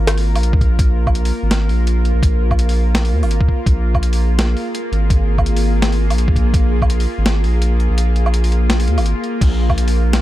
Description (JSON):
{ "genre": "half-time drum and bass", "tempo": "167 BPM", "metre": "4/4", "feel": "swing 56% on 16ths, half-time", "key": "unclear", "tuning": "A4 = 440 Hz", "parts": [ { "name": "bowed-like drone", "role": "sustained chords", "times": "0.0-10.2 s", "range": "Bb3 to Bb4", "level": "-23 LUFS", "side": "left 1 dB", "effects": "built-in reverb, sidechain pumping" }, { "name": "saturated sub bass", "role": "bass", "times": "0.0-10.2 s", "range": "Ab1 to Eb2", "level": "-15 LUFS", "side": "equal", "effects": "none" }, { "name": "boom bap sampler-style drum kit", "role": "drums", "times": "0.1-10.2 s", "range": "crash cymbal, hi-hat, snare drum, woodblock", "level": "-22 LUFS", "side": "equal", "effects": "none" }, { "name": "electronic kick drum", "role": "drums", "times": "0.5-6.9, 9.4-9.8 s", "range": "none", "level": "-15 LUFS", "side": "equal", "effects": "none" } ], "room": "little or no reverb", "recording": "dark, warm production", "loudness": "-14 LUFS", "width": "side -15 dB against mid", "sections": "0.0-10.2 A section", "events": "kick drops out 8.0-9.4", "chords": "0.0 Bb5" }